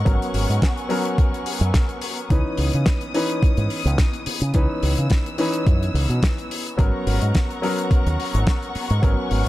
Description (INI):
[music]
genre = nu-disco, nu disco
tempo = 107 BPM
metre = 4/4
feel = swing 54% on 16ths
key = G# minor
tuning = A4 = 440 Hz
[part]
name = clear grand piano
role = accompaniment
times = 0.0-9.5 s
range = E3 to B4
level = -26 LUFS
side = left 1 dB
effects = sidechain pumping, tape echo
[part]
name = dark studio string section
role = sustained chords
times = 0.0-9.5 s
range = B3 to E6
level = -30 LUFS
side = left 2 dB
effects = sidechain pumping
[part]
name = fingered electric bass with an envelope filter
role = bass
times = 0.0-9.5 s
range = G#1 to C#3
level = -20 LUFS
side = equal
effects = none
[part]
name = damped 70s drum kit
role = drums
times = 0.1-9.5 s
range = hi-hat, snare drum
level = -28 LUFS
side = left 2 dB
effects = none
[part]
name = electronic kick drum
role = drums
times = 0.1-9.2 s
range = none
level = -19 LUFS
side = equal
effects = none
[sound]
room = small room ambience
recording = dark, warm production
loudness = -18 LUFS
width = side -16 dB against mid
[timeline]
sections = 0.0-9.5 A section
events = none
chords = 0.0 G#m11; 2.3 C#m9; 6.8 G#m11